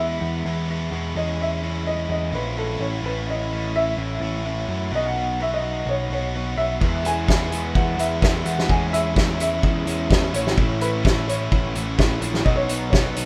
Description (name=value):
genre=indie rock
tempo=128 BPM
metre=4/4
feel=straight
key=E major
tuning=A4 = 440 Hz
part: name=warm upright piano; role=melody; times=0.0-13.3 s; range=A4 to G#5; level=-29 LUFS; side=equal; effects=digital delay
part: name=biting overdriven guitar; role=riff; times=0.0-13.3 s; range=E2 to F#4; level=-32 LUFS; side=equal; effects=none
part: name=growling picked electric bass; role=bass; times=0.0-13.3 s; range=A1 to F#2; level=-29 LUFS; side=equal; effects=overdrive
part: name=overdriven electric guitar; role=riff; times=6.8-13.3 s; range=F#3 to E4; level=-32 LUFS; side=equal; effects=subtle chorus
part: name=loose indie drum kit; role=drums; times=6.8-13.3 s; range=hi-hat, kick drum, snare drum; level=-23 LUFS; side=equal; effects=none
room=light reverb, small room ambience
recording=rough home demo mix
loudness=-22 LUFS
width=mono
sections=0.0-13.3 A section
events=none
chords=0.0 E; 1.2 C#m/E; 2.8 A; 4.9 Badd9; 6.8 E; 8.7 C#m/E; 10.3 A; 12.5 Badd9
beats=0.22 0.69 | 1.16 1.63 2.10 2.58 | 3.05 3.52 3.99 4.46 | 4.93 5.40 5.87 6.34 | 6.81 7.28 7.75 8.22 | 8.69 9.16 9.63 10.11 | 10.57 11.05 11.52 11.99 | 12.46 12.93